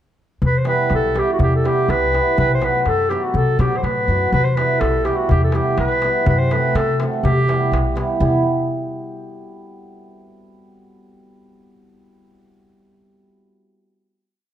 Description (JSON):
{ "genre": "balkan folk, Balkan wedding band", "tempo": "123 BPM", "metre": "2/4", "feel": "straight", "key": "E harmonic minor", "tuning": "A4 = 441 Hz", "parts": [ { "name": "upright bass", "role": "bass", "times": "0.4-8.4 s", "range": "B1 to C3", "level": "-22 LUFS", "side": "equal", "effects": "none" }, { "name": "darbuka", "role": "percussion", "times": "0.4-8.4 s", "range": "none", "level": "-22 LUFS", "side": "left 1 dB", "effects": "none" }, { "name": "warm clarinet", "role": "melody", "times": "0.5-8.4 s", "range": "E4 to C5", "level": "-20 LUFS", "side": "equal", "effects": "none" }, { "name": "cimbalom", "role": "accompaniment", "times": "0.6-8.4 s", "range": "F#3 to A4", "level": "-22 LUFS", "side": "right 2 dB", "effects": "none" } ], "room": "moderate scoring stage reverb, RT60 1.5 s", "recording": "close, detailed microphones", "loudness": "-15 LUFS", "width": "side -10 dB against mid", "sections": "0.4-8.2 A section; 8.2-9.2 final chord", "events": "none", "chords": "0.4 Em; 2.4 B; 4.3 Em; 6.3 F#dim; 7.2 Em" }